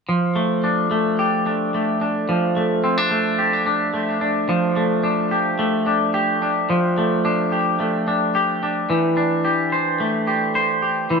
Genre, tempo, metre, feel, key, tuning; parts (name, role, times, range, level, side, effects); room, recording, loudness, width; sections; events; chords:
dream pop; 109 BPM; 4/4; straight; A4 = 441 Hz
twangy electric guitar; solo; 0.1-11.2 s; E3 to C5; -18 LUFS; equal; wide subtle chorus, dub echo
wet spring reverb, RT60 1.6 s; echo-heavy mix; -18 LUFS; side -5 dB against mid
0.1-4.5 A section; 4.5-11.2 B section
0.1 F69; 8.9 C69/E